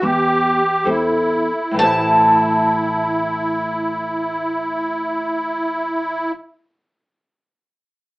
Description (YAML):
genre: fado-style ballad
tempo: 61-77 BPM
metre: 4/4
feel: rubato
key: A minor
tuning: A4 = 440 Hz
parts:
  - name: picked twelve-string acoustic guitar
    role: melody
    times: 0.0-6.3 s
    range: E5 to A5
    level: -16 LUFS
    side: equal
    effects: none
  - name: musette accordion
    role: second line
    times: 0.0-6.3 s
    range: E4 to G4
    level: -19 LUFS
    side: equal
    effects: none
  - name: nylon-string guitar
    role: accompaniment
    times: 0.0-6.4 s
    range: A2 to E5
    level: -25 LUFS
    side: left 1 dB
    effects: none
  - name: upright bass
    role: bass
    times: 0.0-6.3 s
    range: A1 to E2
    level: -27 LUFS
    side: equal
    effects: none
room: moderate studio reverb, RT60 0.5 s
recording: band playing live in one room, AM radio sound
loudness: -16 LUFS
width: side -22 dB against mid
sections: 0.0-1.8 A section; 1.8-5.5 B section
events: slowing down 0.0-1.8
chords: 0.0 Am7